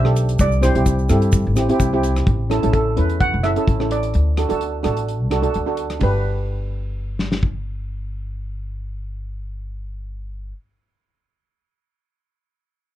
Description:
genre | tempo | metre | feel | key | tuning
calypso | 128 BPM | 4/4 | swing 53% on 16ths | G major | A4 = 441 Hz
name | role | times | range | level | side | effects
steel pan | melody | 0.0-10.5 s | A4 to F#5 | -24 LUFS | right 2 dB | none
steel pan | accompaniment | 0.0-10.5 s | C4 to B4 | -22 LUFS | right 2 dB | none
upright bass | bass | 0.0-10.5 s | F#1 to G2 | -21 LUFS | equal | none
modern studio drum kit | drums | 0.1-7.5 s | hi-hat, kick drum, ride cymbal, rim click, snare drum | -22 LUFS | left 1 dB | none
tube shaker | percussion | 0.2-2.2 s | none | -36 LUFS | right 5 dB | none
room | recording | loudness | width
light reverb | dark, warm production | -17 LUFS | side -13 dB against mid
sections
0.0-6.0 A section; 6.0-9.8 B section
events
none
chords
0.4 C; 2.3 A; 4.1 D; 6.0 G

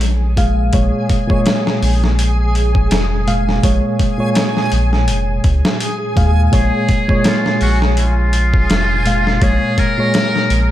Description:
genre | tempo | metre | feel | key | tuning
trip hop | 83 BPM | 4/4 | swing 56% on 16ths | Bb minor | A4 = 440 Hz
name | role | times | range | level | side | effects
reed electric piano | accompaniment | 0.0-10.7 s | Bb2 to F5 | -18 LUFS | equal | tremolo, low-pass filter, tape echo
soft dub sub bass | bass | 0.0-10.7 s | F1 to Eb2 | -15 LUFS | equal | tube saturation
dusty soul sampler-style drum kit | drums | 0.0-10.7 s | hi-hat, kick drum, snare drum | -18 LUFS | equal | overdrive
backwards swelling texture | texture | 0.0-10.7 s | Ab4 | -25 LUFS | equal | built-in reverb, ensemble chorus
trumpet with metal mute | melody | 6.5-10.7 s | F4 to Bb4 | -19 LUFS | equal | vintage 12-bit sampler grit, tape echo
room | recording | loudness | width
moderate lush hall reverb, RT60 1.6 s | dreamy mix soaked in reverb | -12 LUFS | side -13 dB against mid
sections
0.0-10.7 A section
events
none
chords
0.0 Bbm7

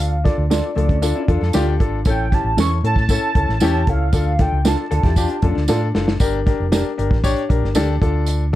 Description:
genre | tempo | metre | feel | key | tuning
uptempo 1960s-style soul | 116 BPM | 4/4 | straight | D harmonic minor | A4 = 440 Hz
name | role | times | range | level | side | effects
warm velvety synth lead | melody | 0.0-5.7 s | D5 to C#6 | -24 LUFS | right 2 dB | chorus, plate reverb
clear grand piano | accompaniment | 0.0-8.6 s | C#4 to C#5 | -23 LUFS | left 4 dB | plate reverb
hollow-body short-scale fingered electric bass | bass | 0.0-8.6 s | F1 to A2 | -20 LUFS | equal | none
warm soul drum kit | drums | 0.0-8.4 s | hi-hat, kick drum, snare drum | -19 LUFS | equal | none
mellow electric guitar | stabs | 0.5-7.9 s | C#4 to D5 | -24 LUFS | right 6 dB | harmonic tremolo, plate reverb
tambourine | percussion | 0.5-8.4 s | none | -32 LUFS | right 8 dB | none
vintage hollow-body jazz guitar | riff | 0.8-6.2 s | F3 to A4 | -28 LUFS | left 5 dB | none
room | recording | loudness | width
light reverb | dark, warm production | -16 LUFS | side -14 dB against mid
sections
0.0-8.6 A section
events
drum fill 5.7-6.2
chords
0.0 Dm; 2.1 A; 4.1 Dm; 6.2 Gm; 8.0 Dm

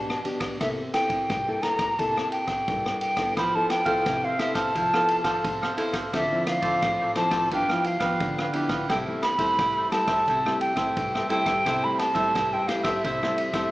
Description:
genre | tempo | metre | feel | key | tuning
samba and choro | 87 BPM | 4/4 | straight | C major | A4 = 438 Hz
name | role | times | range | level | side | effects
hollow concert flute | melody | 0.0-13.7 s | E5 to B5 | -25 LUFS | equal | slapback echo
nylon-string guitar | accompaniment | 0.0-13.7 s | G2 to A4 | -30 LUFS | left 1 dB | none
swinging big-band drum kit | drums | 0.1-13.7 s | kick drum, ride cymbal, rim click | -32 LUFS | equal | none
cavaquinho | accompaniment | 3.4-13.7 s | D4 to F5 | -29 LUFS | right 1 dB | none
room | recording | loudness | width
wet large studio reverb, RT60 1.5 s | heard from further back in the room, small speaker sound | -22 LUFS | side -18 dB against mid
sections
0.0-13.7 A section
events
none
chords
0.0 Em7 (rootless); 0.6 C6; 3.4 Fmaj7#11; 6.1 Dm9; 7.5 G6; 8.9 C6

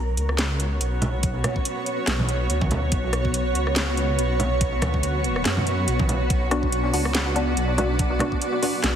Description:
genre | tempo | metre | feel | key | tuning
deep dubstep | 142 BPM | 4/4 | swing 56% on 16ths, half-time | B minor | A4 = 440 Hz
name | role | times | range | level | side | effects
granular cloud pad | sustained chords | 0.0-9.0 s | B3 to D5 | -26 LUFS | right 1 dB | built-in reverb
dark detuned saw bass | bass | 0.0-9.0 s | B1 to F#2 | -25 LUFS | equal | none
garage drum kit | drums | 0.2-8.9 s | hi-hat, rim click, snare drum | -27 LUFS | equal | none
congas | percussion | 1.0-8.3 s | none | -30 LUFS | right 2 dB | dub echo
electronic kick drum | drums | 1.2-8.4 s | none | -25 LUFS | equal | none
filtered dub chord stab | stabs | 6.5-8.7 s | B3 to F#4 | -26 LUFS | left 1 dB | lush chorus, dub echo
room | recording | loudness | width
moderate lush hall reverb, RT60 1.7 s | heavily compressed radio sound | -20 LUFS | side -9 dB against mid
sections
0.0-9.0 A section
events
none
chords
0.0 Bm

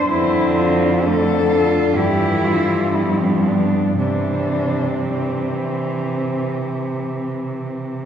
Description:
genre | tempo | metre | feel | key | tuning
classical, lyrical piece for cello ensemble | 54-65 BPM | 4/4 | rubato | C major | A4 = 441 Hz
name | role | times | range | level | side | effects
muted cello | melody | 0.0-7.3 s | C4 to A4 | -22 LUFS | left 3 dB | none
muted cello | second line | 0.0-7.8 s | A3 to F4 | -24 LUFS | right 4 dB | none
muted cello | accompaniment | 0.1-8.1 s | D3 to F3 | -23 LUFS | left 2 dB | none
muted cello | bass | 0.1-8.1 s | F2 to C3 | -22 LUFS | right 2 dB | none
room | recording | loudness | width
wet church reverb, RT60 4.2 s | recorded in a church or concert hall | -16 LUFS | side -8 dB against mid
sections
0.0-8.1 A section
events
none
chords
0.1 Dm7/F; 2.0 Em/G; 3.0 G7; 4.0 C

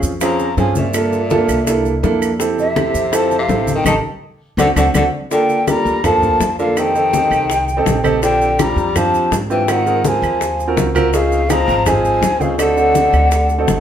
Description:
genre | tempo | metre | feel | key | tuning
Afro-Cuban jazz | 165 BPM | 4/4 | straight | unclear | A4 = 440 Hz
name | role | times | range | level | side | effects
warm concert grand piano | accompaniment | 0.0-13.8 s | Bb3 to Bb4 | -18 LUFS | right 3 dB | none
upright bass | bass | 0.0-13.8 s | G1 to Ab2 | -22 LUFS | equal | none
congas | percussion | 0.0-13.8 s | none | -23 LUFS | left 2 dB | none
maracas | percussion | 0.0-13.8 s | none | -31 LUFS | right 5 dB | none
breathy mellow jazz flute | melody | 0.2-13.8 s | E5 to Bb5 | -18 LUFS | left 1 dB | plate reverb
warm tenor saxophone | second line | 0.2-13.8 s | Bb2 to G3 | -21 LUFS | left 2 dB | none
bongos | percussion | 0.2-13.8 s | none | -24 LUFS | left 5 dB | none
claves | percussion | 0.2-13.3 s | none | -28 LUFS | right 4 dB | none
room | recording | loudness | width
wet studio reverb, RT60 0.7 s | heard from further back in the room | -13 LUFS | side -9 dB against mid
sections
0.0-5.3 A section; 5.3-13.8 B section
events
band accent 3.9-5.3; drum fill 4.2-5.3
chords
0.0 Bbm9; 0.9 Gm7; 1.7 C13; 2.4 Fmaj9; 3.9 Eb; 4.6 D7; 5.3 Gm9; 6.8 F9; 8.2 Bb69; 9.7 Ab13; 11.1 Dbmaj7; 12.6 D7b9

